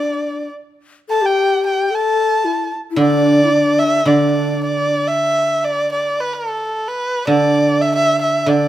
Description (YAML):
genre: chinese traditional, Chinese chamber ensemble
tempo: 110 BPM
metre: 2/4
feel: uneven beats, rubato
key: D zhi mode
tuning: A4 = 439 Hz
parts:
  - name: dark erhu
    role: melody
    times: 0.0-8.7 s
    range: A4 to A5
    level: -17 LUFS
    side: right 1 dB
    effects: none
  - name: breathy mellow low xiao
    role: second line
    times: 0.0-4.9 s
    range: D4 to A4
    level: -19 LUFS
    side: left 6 dB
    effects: none
  - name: guzheng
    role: accompaniment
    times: 3.0-8.7 s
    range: D3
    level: -17 LUFS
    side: right 2 dB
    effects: none
room: light reverb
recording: close, detailed microphones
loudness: -14 LUFS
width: side -13 dB against mid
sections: 0.0-5.2 A section; 5.2-8.7 B section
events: none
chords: none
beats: 0.24 | 0.80 1.36 | 1.92 2.46 | 2.99 3.53 | 4.07 4.63 | 5.20 5.76 | 6.32 6.86 | 7.39 7.93 | 8.46